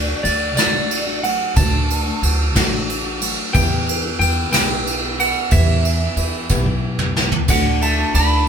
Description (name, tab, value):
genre	folk rock and heartland rock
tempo	61 BPM (dotted quarters)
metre	6/8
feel	straight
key	D major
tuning	A4 = 442 Hz
part	electric slide guitar	melody	0.0-8.5 s	D5 to B5	-22 LUFS	right 1 dB	none
part	dark upright piano	accompaniment	0.0-8.5 s	D4 to F#5	-34 LUFS	right 4 dB	none
part	picked steel-string acoustic guitar	accompaniment	0.0-8.5 s	D3 to G4	-28 LUFS	left 5 dB	none
part	upright bass	bass	0.0-8.5 s	A1 to E2	-20 LUFS	equal	none
part	soft brush drum kit	drums	0.2-8.3 s	crash cymbal, kick drum, ride cymbal, snare drum, splash cymbal, toms	-19 LUFS	right 1 dB	none
part	tambourine	percussion	0.6-7.9 s	none	-30 LUFS	right 8 dB	none
part	electric guitar through a small old amp	riff	7.5-8.5 s	D3 to D4	-21 LUFS	right 1 dB	none
room	light reverb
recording	band playing live in one room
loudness	-15 LUFS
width	side -7 dB against mid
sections	0.0-8.5 A section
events	drum fill 6.5-7.5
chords	0.0 D; 3.5 Em; 7.5 D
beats	0.57 | 1.56 2.56 | 3.54 4.53 | 5.52 6.50 | 7.49 8.47